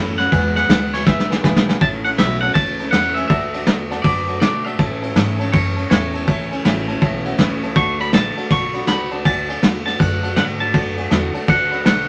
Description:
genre	rockabilly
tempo	161 BPM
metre	4/4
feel	swing 64% on 8ths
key	A major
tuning	A4 = 440 Hz
part	picked steel-string acoustic guitar	accompaniment	0.0-12.1 s	E2 to F#4	-28 LUFS	equal	none
part	warm upright piano	accompaniment	0.0-12.0 s	B4 to B5	-32 LUFS	equal	none
part	upright bass	bass	0.0-12.1 s	A1 to B2	-30 LUFS	equal	none
part	twangy electric guitar	melody	0.2-12.1 s	C#5 to C#6	-23 LUFS	equal	none
part	vintage brush drum kit	drums	0.2-12.0 s	kick drum, ride cymbal, snare drum	-20 LUFS	equal	none
room	moderate studio reverb, RT60 0.5 s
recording	none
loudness	-18 LUFS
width	mono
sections	0.0-1.8 A section; 1.8-12.1 B section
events	clean electric guitar solo 0.0-1.8; drum fill 1.1-1.8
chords	0.3 E; 1.8 A; 3.3 D; 4.8 A; 7.8 D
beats	| 0.32 0.69 1.06 1.43 | 1.80 2.18 2.55 2.92 | 3.29 3.67 4.04 4.41 | 4.78 5.16 5.53 5.90 | 6.27 6.64 7.02 7.39 | 7.76 8.13 8.51 8.88 | 9.25 9.62 9.99 10.37 | 10.74 11.11 11.48 11.86

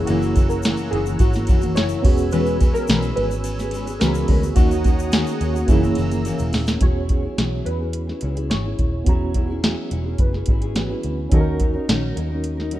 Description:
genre	indie pop, bedroom pop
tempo	107 BPM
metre	4/4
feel	straight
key	E lydian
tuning	A4 = 439 Hz
part	warm analog keys	melody	0.0-11.0 s	E4 to C#5	-28 LUFS	equal	ensemble chorus, tape echo
part	fingerpicked steel-string acoustic guitar	accompaniment	0.0-12.8 s	F#2 to B4	-26 LUFS	left 4 dB	lush chorus, warbly pitch drift
part	mellow tine electric piano	accompaniment	0.0-12.8 s	A#3 to A#5	-27 LUFS	right 5 dB	overdrive, medium tremolo, cassette tape
part	warm analog pad	sustained chords	0.0-6.8 s	C#5 to E6	-34 LUFS	right 2 dB	chorus
part	vintage muted picked electric bass	bass	0.0-12.8 s	D#1 to E2	-24 LUFS	equal	none
part	soft vintage rhythm box	drums	0.1-12.8 s	hi-hat, kick drum, ride cymbal, snare drum	-19 LUFS	equal	none
part	egg shaker	percussion	0.1-6.8 s	none	-42 LUFS	left 10 dB	none
room	little or no reverb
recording	rough home demo mix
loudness	-18 LUFS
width	side -14 dB against mid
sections	0.0-6.8 A section; 6.8-12.8 B section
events	drum fill 5.7-6.8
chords	0.0 F#7; 2.0 E6; 4.6 D#m7; 5.7 F#7; 6.8 E69; 11.3 D#m7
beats	| 0.08 0.64 1.20 1.76 | 2.32 2.88 3.45 4.01 | 4.57 5.13 5.69 6.25 | 6.81 7.38 7.94 8.50 | 9.06 9.63 10.19 10.76 | 11.32 11.88 12.44

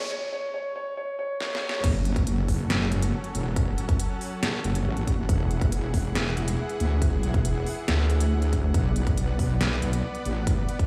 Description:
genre	heavy wobble dubstep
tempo	139 BPM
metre	4/4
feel	half-time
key	F# minor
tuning	A4 = 442 Hz
part	dark grand piano	melody	0.0-1.8 s	C#5	-34 LUFS	equal	vintage 12-bit sampler grit, digital delay
part	supersaw pad	sustained chords	0.0-10.9 s	E3 to F#5	-37 LUFS	equal	sidechain pumping
part	riser and impact	sound effects	0.0-3.6 s	none	-37 LUFS	equal	none
part	dubstep drum kit	drums	1.4-10.9 s	crash cymbal, hi-hat, snare drum	-33 LUFS	equal	none
part	wobble bass	bass	1.8-10.7 s	E1 to D2	-27 LUFS	equal	chorus, overdrive
part	electronic kick drum	drums	1.8-10.9 s	none	-28 LUFS	equal	none
room	light reverb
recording	played on a big sound system in a bare room, stone room reverb, high-pass filter, small room reverb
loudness	-26 LUFS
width	mono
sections	0.0-1.8 A section; 1.8-10.9 B section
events	build-up 0.0-1.8; drum fill 1.4-1.8; drop 1.8-10.9; impact 1.8-3.6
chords	0.0 C#; 1.8 F#m; 5.3 Eadd9; 8.7 Bm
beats	| 0.11 0.54 0.97 1.41 | 1.84 2.27 2.70 3.13 | 3.56 4.00 4.43 4.86 | 5.29 5.72 6.15 6.58 | 7.02 7.45 7.88 8.31 | 8.74 9.18 9.61 10.04 | 10.47

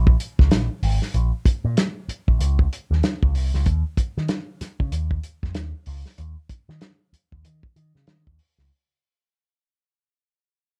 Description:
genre	funk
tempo	95 BPM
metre	4/4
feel	swing 60% on 16ths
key	Bb minor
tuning	A4 = 440 Hz
part	picked electric bass with an envelope filter	bass	0.0-8.7 s	Ab1 to Eb3	-24 LUFS	equal	none
part	warm soul drum kit	drums	0.1-8.6 s	hi-hat, kick drum, snare drum	-23 LUFS	equal	none
room	light reverb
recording	dark, warm production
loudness	-22 LUFS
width	mono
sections	0.0-8.7 A section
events	fade-out 0.0-8.7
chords	none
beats	0.51 | 1.14 1.77 2.40 3.03 | 3.66 4.29 4.92 5.56 | 6.19 6.82 7.45 8.08

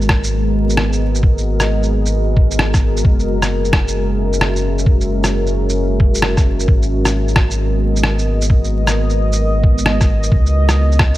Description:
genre	future garage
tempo	132 BPM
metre	4/4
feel	swing 66% on 16ths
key	G# minor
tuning	A4 = 441 Hz
part	deep dark ambient pad	sustained chords	0.0-11.2 s	G#3 to E5	-20 LUFS	equal	chorus, built-in reverb, vintage 12-bit sampler grit, sidechain pumping
part	soft dub sub bass	bass	0.0-11.2 s	F#1 to C#2	-17 LUFS	equal	sidechain pumping
part	electronic shaker and rim click	drums	0.0-11.2 s	none	-19 LUFS	equal	none
part	electronic kick drum	drums	0.1-11.1 s	none	-13 LUFS	equal	none
room	digital ambience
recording	vinyl crackle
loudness	-13 LUFS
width	side -15 dB against mid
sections	0.0-11.2 A section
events	none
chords	0.0 G#m9; 3.0 F#9; 6.7 G#m9; 10.3 C#m9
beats	0.32 0.77 | 1.23 1.68 2.14 2.59 | 3.04 3.50 3.95 4.41 | 4.86 5.32 5.77 6.23 | 6.68 7.14 7.59 8.04 | 8.50 8.95 9.41 9.86 | 10.32 10.77

